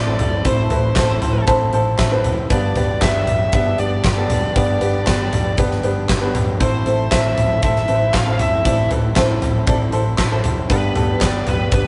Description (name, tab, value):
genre	piano-driven pop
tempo	117 BPM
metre	4/4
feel	straight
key	A minor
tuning	A4 = 441 Hz
part	bluesy overdriven lead guitar	melody	0.0-11.9 s	B4 to F5	-24 LUFS	equal	distortion
part	clear upright piano	accompaniment	0.0-11.9 s	G2 to C6	-24 LUFS	equal	none
part	warm symphonic string section	sustained chords	0.0-11.9 s	C3 to G4	-35 LUFS	equal	none
part	twelve-string electric guitar	riff	0.0-11.9 s	G2 to A4	-31 LUFS	equal	none
part	vintage muted fingered electric bass	bass	0.0-11.9 s	F1 to A1	-24 LUFS	equal	none
part	huge arena drum kit	drums	0.2-11.9 s	handclaps, hi-hat, kick drum, snare drum, toms	-22 LUFS	equal	none
room	moderate stone room reverb, RT60 1.4 s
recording	rough rehearsal-room recording, nothing above 10.7 kHz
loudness	-18 LUFS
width	mono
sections	0.0-11.9 A section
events	upright piano fill 1.0-2.5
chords	0.0 Am; 2.5 G; 6.6 Am; 10.7 G